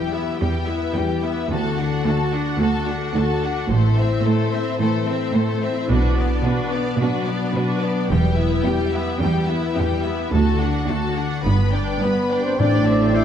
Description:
cinematic; 108 BPM; 4/4; straight; A4 = 439 Hz
clear symphonic violin section; melody; 0.0-13.2 s; B4 to B5; -31 LUFS; left 4 dB
rich symphonic violin section; second line; 0.0-13.2 s; D4 to D5; -29 LUFS; left 3 dB
clear symphonic viola section; accompaniment; 0.0-13.2 s; G3 to F#4; -27 LUFS; right 1 dB
concert harp; arpeggios; 0.0-13.2 s; G2 to B5; -25 LUFS; left 7 dB
clear studio cello section; bass; 0.0-13.2 s; D2 to B2; -23 LUFS; right 3 dB
rich symphonic double bass section; bass; 1.5-13.2 s; E1 to D2; -22 LUFS; right 2 dB
silver concert flute; second line; 12.0-13.2 s; B4 to E5; -26 LUFS; equal
mellow French horn section; sustained chords; 12.0-13.2 s; B3 to E4; -22 LUFS; left 3 dB
dark trumpet section; stabs; 12.0-13.2 s; B4 to E5; -25 LUFS; right 2 dB
warm oboe; second line; 12.6-13.2 s; C5 to D5; -30 LUFS; right 1 dB
warm trombone section; sustained chords; 12.6-12.8 s; E3 to C4; -28 LUFS; right 5 dB
timpani; percussion; 12.6-13.2 s; A2; -23 LUFS; left 1 dB
wet concert hall reverb, RT60 1.8 s; dark, warm production; -18 LUFS; side -9 dB against mid
0.0-12.6 A section
build-up 0.0-12.6
0.0 Em; 1.5 D; 3.7 Am; 5.9 Bm; 8.1 Em; 10.3 D; 11.5 G; 12.6 Cadd9/A

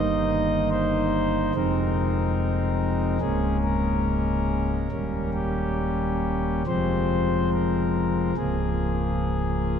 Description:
classical, chorale-style piece for pipe organ; 71 BPM; 4/4; rubato; A4 = 439 Hz
pipe organ, principal; solo; 0.0-9.8 s; Db1 to Eb5; -22 LUFS; equal
wet cathedral reverb, RT60 5.1 s; minimal, uncompressed stereo recording; -22 LUFS; side -8 dB against mid
0.0-9.8 A section
0.0 Eb/G; 1.6 Fm7; 3.2 Bbm7/Db; 4.9 Eb7; 6.7 Fm; 8.4 Bbm7/Db

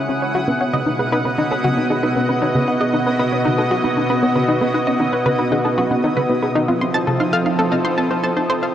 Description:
ambient, sequencer-driven space music; 116 BPM; 4/4; straight; A4 = 440 Hz
lush unison pad; sustained chords; 0.0-8.7 s; B2 to F#5; -19 LUFS; equal; chorus
analog pluck; riff; 0.0-8.7 s; B3 to C6; -21 LUFS; left 1 dB; chorus, ping-pong delay
bubbling stepped-filter texture; texture; 0.0-8.7 s; E4 to D#6; -29 LUFS; right 1 dB; chorus, built-in reverb
warbly dusty pluck; arpeggios; 0.5-8.7 s; C3 to C#5; -23 LUFS; right 1 dB; chorus, auto-pan, ping-pong delay
wet huge ambient reverb, RT60 7.4 s; worn, warbling old tape, cassette tape, warbly pitch drift; -16 LUFS; side -10 dB against mid
0.0-8.7 A section
filter sweep on synth arpeggio sound 0.0-8.7
0.5 B; 6.7 F7

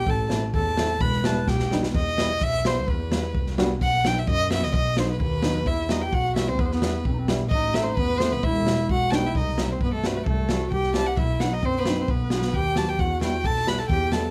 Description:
klezmer; 130 BPM; 2/4; straight; E harmonic minor; A4 = 437 Hz
warm violin; melody; 0.0-14.3 s; A4 to B5; -29 LUFS; equal
breathy clarinet; second line; 0.0-1.7, 5.7-14.3 s; A3 to B4; -32 LUFS; equal
warm double bass; bass; 0.1-14.2 s; E1 to G2; -30 LUFS; equal
crunchy breakbeat drum kit; drums; 0.1-14.2 s; kick drum, snare drum; -29 LUFS; equal
dark upright piano; accompaniment; 0.3-14.2 s; F#3 to F#4; -31 LUFS; equal
light reverb; -24 LUFS; mono
0.0-1.9 A section; 1.9-9.4 B section; 9.4-14.3 C section
speeding up 0.0-14.3; violin solo 0.0-1.9; drum fill 1.5-1.9
0.1 Am; 1.0 Em; 3.8 B; 5.7 Em; 7.5 Am; 8.4 Em; 9.4 C; 11.2 B; 13.0 Em

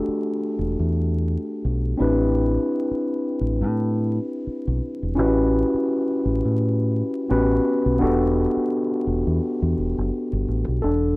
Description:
R&B, neo-soul; 85 BPM; 4/4; swing 57% on 16ths; E minor; A4 = 440 Hz
overdriven tine electric piano; accompaniment; 0.0-11.2 s; A3 to B4; -22 LUFS; equal
deep dub fingered electric bass; bass; 0.1-11.2 s; E1 to A2; -22 LUFS; equal
little or no reverb; rough home demo mix, vinyl crackle; -20 LUFS; side -22 dB against mid
0.0-10.8 A section
0.0 Em11; 2.0 Am9; 5.2 A7; 7.3 A13; 8.0 Em11

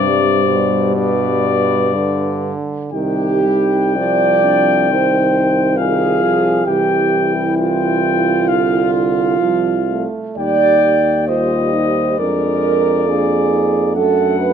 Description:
classical, hymn-like piece for brass band; 65 BPM; 4/4; uneven beats, rubato; C minor; A4 = 440 Hz
clear flugelhorn; melody; 0.0-14.5 s; D5 to G5; -20 LUFS; left 9 dB
mellow French horn section; second line; 0.0-14.5 s; E4 to D5; -17 LUFS; right 5 dB
clear trombone; accompaniment; 0.0-14.5 s; B2 to Bb3; -24 LUFS; right 3 dB
dark euphonium; accompaniment; 0.0-14.5 s; G3 to F4; -22 LUFS; left 4 dB
clear tuba; bass; 0.0-14.5 s; C2 to G2; -20 LUFS; equal
light reverb; close, detailed microphones; -13 LUFS; side -8 dB against mid
0.0-2.9 A section; 2.9-14.5 B section
0.0 Gsus4; 1.0 G; 2.9 Cm; 6.7 Cadd11; 10.4 Cm/Eb; 12.2 Ddim/F; 14.0 D/F#

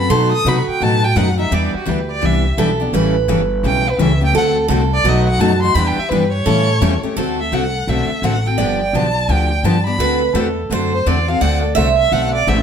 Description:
acoustic string swing (jazz manouche); 170 BPM; 4/4; swing 62% on 8ths; D mixolydian; A4 = 440 Hz
rich violin; melody; 0.0-12.6 s; F#4 to D#6; -20 LUFS; equal; slapback echo, plate reverb
picked steel-string acoustic guitar; second line; 0.0-12.6 s; F#4 to E5; -21 LUFS; right 6 dB
picked steel-string acoustic guitar; accompaniment; 0.0-12.6 s; B2 to A4; -21 LUFS; left 6 dB
upright bass; bass; 0.0-12.6 s; G1 to C3; -18 LUFS; equal
picked steel-string acoustic guitar; accompaniment; 0.1-12.6 s; B2 to B4; -24 LUFS; right 5 dB
moderate studio reverb, RT60 0.9 s; -14 LUFS; side -7 dB against mid
0.0-7.2 A section; 7.2-12.6 A section
violin solo 0.0-12.6
0.1 B7b9; 1.5 Em7; 2.9 A7; 4.3 D7; 5.1 B7; 5.8 Em7; 6.5 A7; 7.2 D7; 8.6 G7; 10.0 D7

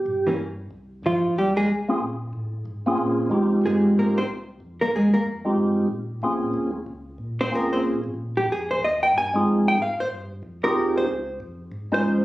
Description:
soul jazz organ trio; 185 BPM; 4/4; swing 62% on 8ths; F minor; A4 = 436 Hz
percussive tonewheel organ; melody; 0.0-12.2 s; Ab3 to C5; -22 LUFS; equal; slow rotary speaker, chorus vibrato, plate reverb
mellow tonewheel organ; bass; 0.0-12.2 s; C2 to Bb2; -36 LUFS; equal; chorus vibrato, slow rotary speaker
hollow-body jazz guitar; accompaniment; 0.3-5.3, 7.4-12.2 s; E3 to Ab5; -22 LUFS; equal
moderate studio ambience, RT60 0.5 s; recorded on a phone in the room, studio reverb, compression; -21 LUFS; side -16 dB against mid
0.7-12.2 A section
hollow-body jazz guitar solo 0.7-12.2
0.0 C7b9 (rootless); 0.7 Fm9; 2.0 Bbm9; 3.3 Fm9; 5.9 Bbm9; 8.5 Fm9; 11.1 Dbmaj7

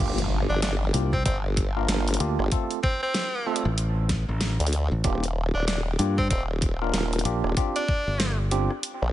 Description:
glitch hop; 95 BPM; 4/4; swing 60% on 16ths; G minor; A4 = 440 Hz
tine electric piano; stabs; 0.0-8.7 s; A3 to Bb4; -30 LUFS; right 1 dB; medium stereo tremolo, vintage 12-bit sampler grit, sidechain pumping, dub echo
formant-sweep wobble bass; bass; 0.0-9.1 s; Eb1 to D2; -26 LUFS; equal; chorus, tube saturation
impact; sound effects; 0.0-2.5 s; -34 LUFS; equal
dubstep drum kit; drums; 0.2-9.0 s; hi-hat, rim click, snare drum; -30 LUFS; equal; small room ambience
edgy tenor saxophone; melody; 0.5-8.4 s; C4 to D4; -31 LUFS; equal; dub echo
modern bright fingered electric bass; bass; 0.9-8.7 s; G1 to G2; -25 LUFS; equal
electronic kick drum; drums; 1.1-8.0 s; -26 LUFS; equal; small room ambience
little or no reverb; nothing above 10.8 kHz; -23 LUFS; side -13 dB against mid
0.0-9.1 A section
drop 0.0-9.1; impact 0.0-2.5
0.0 Gm7; 2.5 F; 5.0 Ebmaj9; 7.6 G7(no3)

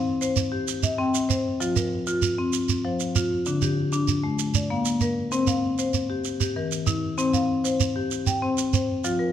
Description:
southern african traditional, mbira-style interlocking cycle; 129 BPM (dotted quarters); 12/8; straight; C equiheptatonic; A4 = 440 Hz
marimba with medium hard mallets; arpeggios; 0.0-9.3 s; D3-29c to G5; -24 LUFS; left 2 dB
shekere; percussion; 0.2-9.2 s; -27 LUFS; right 6 dB
wet recital hall reverb, RT60 1.7 s; -22 LUFS; side -10 dB against mid
0.0-7.2 A section; 7.2-9.3 B section
0.0 Cm; 1.6 F5; 3.5 D5; 4.4 Bb; 5.3 C5; 6.3 Eb; 7.2 C5

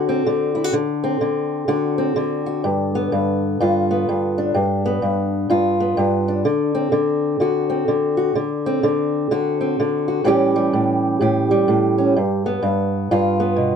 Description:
blues; 126 BPM; 4/4; swing 61% on 8ths; D mixolydian; A4 = 440 Hz
fingerpicked old ladder-braced acoustic guitar; solo; 0.0-13.8 s; G2 to G4; -17 LUFS; equal
wet booth ambience, RT60 0.3 s; heard from further back in the room; -17 LUFS; side -7 dB against mid
0.0-13.8 A section
0.0 D7; 2.6 G7; 6.5 D7; 10.3 A7; 12.2 G7

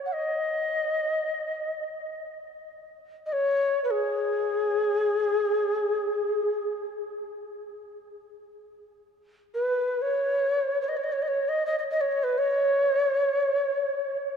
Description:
world meditative, free-time meditation music; free time; G# minor pentatonic; A4 = 440 Hz
breathy mellow Native American-style cedar flute; solo; 0.1-14.2 s; G#4 to F#5; -25 LUFS; left 1 dB; tape echo
wet cathedral reverb, RT60 5.5 s; dark, warm production; -24 LUFS; side -7 dB against mid
0.0-8.6 A section; 8.6-14.4 A section

